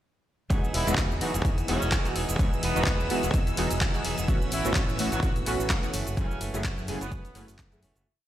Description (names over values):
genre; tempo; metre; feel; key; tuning
filtered disco house; 127 BPM; 4/4; swing 55% on 16ths; E major; A4 = 440 Hz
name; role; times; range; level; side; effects
funky polysynth comp; accompaniment; 0.5-7.8 s; E3 to G#4; -33 LUFS; equal; chorus, phaser, sidechain pumping
string machine, full ensemble; sustained chords; 0.5-8.1 s; E3 to E6; -36 LUFS; equal; phaser, ensemble chorus, sidechain pumping
direct-recorded clean electric guitar; riff; 0.5-8.1 s; E3 to G#4; -35 LUFS; right 3 dB; sidechain pumping
modern bright fingered electric bass; bass; 0.5-8.0 s; E1 to A2; -31 LUFS; equal; sidechain pumping
electronic kick drum; drums; 0.5-7.7 s; none; -27 LUFS; equal; overdrive, small room ambience
punchy analog drum machine; drums; 0.5-8.0 s; handclaps, hi-hat, shaker; -33 LUFS; equal; overdrive, sidechain pumping on hats, small room ambience, sidechain pumping on perc
clear horn section; melody; 0.7-7.5 s; C#3 to F#4; -35 LUFS; equal; sidechain pumping, ping-pong delay
egg shaker; percussion; 4.3-8.0 s; none; -47 LUFS; right 4 dB; none
room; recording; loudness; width
light reverb, digital ambience; played on a big sound system in a bare room, stone room reverb; -24 LUFS; side -12 dB against mid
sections
0.5-8.1 drop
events
drop 0.5-8.1; fade-out 5.5-8.1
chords
0.5 Emaj9; 4.3 A69; 5.9 F#m7